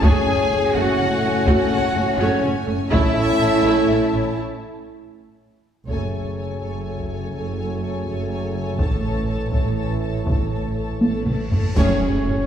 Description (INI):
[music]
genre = cinematic, epic orchestral film score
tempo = 82 BPM (dotted quarters)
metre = 6/8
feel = straight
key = F# minor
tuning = A4 = 440 Hz
[part]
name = warm symphonic violin section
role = melody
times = 0.0-12.5 s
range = G#4 to A5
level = -31 LUFS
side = left 4 dB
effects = none
[part]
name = warm symphonic violin section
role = second line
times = 0.0-12.5 s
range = C#5 to A5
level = -31 LUFS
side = left 4 dB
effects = none
[part]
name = rich symphonic viola section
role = accompaniment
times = 0.0-12.5 s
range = F#3 to A4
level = -27 LUFS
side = right 1 dB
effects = none
[part]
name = bright trombone section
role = sustained chords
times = 0.0-12.5 s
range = A2 to C#4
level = -30 LUFS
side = right 2 dB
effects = none
[part]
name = pipe organ, stopped flute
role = sustained chords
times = 0.0-4.4, 11.8-12.5 s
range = A3 to C#5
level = -28 LUFS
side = equal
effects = none
[part]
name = warm French horn section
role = sustained chords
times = 0.0-12.5 s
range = F#3 to A4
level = -28 LUFS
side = left 5 dB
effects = none
[part]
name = clear trumpet section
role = stabs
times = 0.0-4.3, 11.8-12.5 s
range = C#5 to G#5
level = -27 LUFS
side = right 1 dB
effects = none
[part]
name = rich symphonic double bass section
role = bass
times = 0.0-12.3 s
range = F#1 to A1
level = -27 LUFS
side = right 2 dB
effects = none
[part]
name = warm symphonic cello section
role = bass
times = 0.0-12.3 s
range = F#2 to G#4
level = -26 LUFS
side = right 2 dB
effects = none
[part]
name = taiko ensemble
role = drums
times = 0.0-3.4, 5.9-12.2 s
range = none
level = -21 LUFS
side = equal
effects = none
[part]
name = cymbal swell and impact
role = sound effects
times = 11.4-12.5 s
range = none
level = -35 LUFS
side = equal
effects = none
[part]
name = clash cymbals and concert bass drum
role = percussion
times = 11.8-12.5 s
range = none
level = -26 LUFS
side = equal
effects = none
[part]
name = timpani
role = percussion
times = 11.8-12.5 s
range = F#2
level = -29 LUFS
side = equal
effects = none
[sound]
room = wet scoring stage reverb, RT60 1.9 s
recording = heard from further back in the room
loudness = -18 LUFS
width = side -9 dB against mid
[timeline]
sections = 0.0-5.9 A section; 5.9-11.8 B section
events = break 4.4-5.9; band accent 5.9-6.4, 11.8-12.3; drum fill 11.0-11.8; cymbal swell 11.4-11.8; impact 11.8-12.5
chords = 0.0 F#madd9; 2.9 A; 5.9 F#madd9; 8.8 A; 11.8 F#madd9